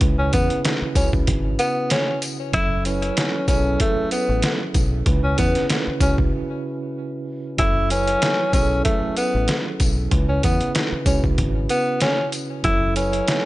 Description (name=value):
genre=hip hop, boom-bap hip-hop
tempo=95 BPM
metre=4/4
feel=swing 55% on 16ths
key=F# minor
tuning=A4 = 440 Hz
part: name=mellow tine electric piano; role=accompaniment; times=0.0-13.5 s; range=C#3 to B4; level=-26 LUFS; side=right 3 dB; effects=medium stereo tremolo, high-pass filter, low-pass filter
part: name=deep dub fingered electric bass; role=bass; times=0.0-13.2 s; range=F#1 to E2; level=-23 LUFS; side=equal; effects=none
part: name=trip hop sampler-style drum kit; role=drums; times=0.0-13.4 s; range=hi-hat, kick drum, snare drum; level=-22 LUFS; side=equal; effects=overdrive
part: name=breathy tenor saxophone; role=melody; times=0.2-13.5 s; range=A3 to E4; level=-23 LUFS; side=left 1 dB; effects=high-pass filter, low-pass filter, ping-pong delay
part: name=tambourine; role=percussion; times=0.3-13.1 s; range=none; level=-35 LUFS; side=left 4 dB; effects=none
room=digital ambience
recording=nothing above 10.4 kHz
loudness=-18 LUFS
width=side -17 dB against mid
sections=0.0-13.5 A section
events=break 6.3-7.6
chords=0.0 C#m7; 2.5 F#m7; 5.1 C#m7; 7.6 F#m7; 10.1 C#m7; 12.6 F#m7